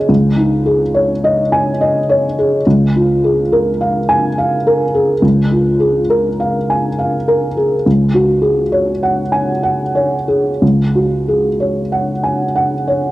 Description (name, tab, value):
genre	neoclassical minimalist piano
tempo	60-71 BPM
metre	3/4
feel	rubato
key	Bb minor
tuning	A4 = 442 Hz
part	felt-muted upright piano	solo	0.0-13.1 s	Db2 to Ab5	-12 LUFS	equal	cassette tape
room	light reverb, small room reverb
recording	home recording on cassette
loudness	-12 LUFS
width	side -17 dB against mid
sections	0.0-13.1 A section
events	none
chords	0.0 Dbsus2; 2.6 Bbm7/Db; 7.9 Gbsus2/Db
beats	| 0.09 0.94 1.79 | 2.65 3.51 4.37 | 5.23 6.10 6.98 | 7.86 8.72 9.63 | 10.62 11.60 12.56